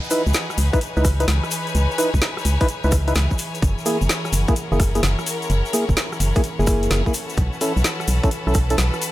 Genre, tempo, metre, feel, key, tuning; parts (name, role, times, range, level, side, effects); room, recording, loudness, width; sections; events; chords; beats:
UK garage, two-step garage; 128 BPM; 4/4; swing 67% on 16ths; C# minor; A4 = 441 Hz
rich studio violin section; sustained chords; 0.0-9.1 s; C#4 to B4; -33 LUFS; equal; sidechain pumping
egg shaker; percussion; 0.0-9.1 s; -31 LUFS; left 4 dB
bright studio string section; texture; 0.0-9.1 s; E3 to G#5; -29 LUFS; left 2 dB; sidechain pumping
percussive organ stab; stabs; 0.1-8.8 s; A#3 to B4; -24 LUFS; equal; chorus, cassette tape, tape echo
garage drum kit; drums; 0.1-9.1 s; hi-hat, rim click, snare drum; -26 LUFS; equal; studio reverb
organ-like FM bass; bass; 0.3-8.9 s; F#1 to C#2; -19 LUFS; equal; sidechain pumping
electronic kick drum; drums; 0.7-8.7 s; -19 LUFS; equal; studio reverb
small room reverb; -18 LUFS; side -15 dB against mid
0.0-9.1 A section
0.0 C#m7; 3.6 F#7; 7.1 B7sus4
0.34 0.81 1.28 | 1.75 2.22 2.69 3.16 | 3.62 4.09 4.56 5.03 | 5.50 5.97 6.44 6.91 | 7.37 7.84 8.31 8.78